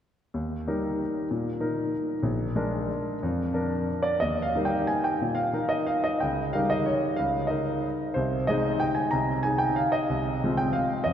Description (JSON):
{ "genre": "classical, piano waltz", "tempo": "165-204 BPM", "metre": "3/4", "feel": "rubato", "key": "Eb major", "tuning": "A4 = 440 Hz", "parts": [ { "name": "clear grand piano", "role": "solo", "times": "0.3-11.1 s", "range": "Bb1 to Bb5", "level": "-24 LUFS", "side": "equal", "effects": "none" } ], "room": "wet church reverb, RT60 3.8 s", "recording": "none", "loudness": "-24 LUFS", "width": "side -9 dB against mid", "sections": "0.3-4.2 A section; 4.2-11.1 B section", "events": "none", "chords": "0.3 Eb; 2.2 Bb7; 4.2 Eb; 6.2 Eb7/Db; 8.2 Ab/C; 10.1 Fm7/C", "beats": "| 0.34 0.67 1.00 | 1.31 1.61 1.92 | 2.23 2.55 2.88 | 3.21 3.53 3.88 | 4.23 4.57 4.90 | 5.23 5.55 5.89 | 6.22 6.55 6.88 | 7.19 7.51 7.84 | 8.16 8.50 8.82 | 9.13 9.44 9.78 | 10.09 10.42 10.74 | 11.05" }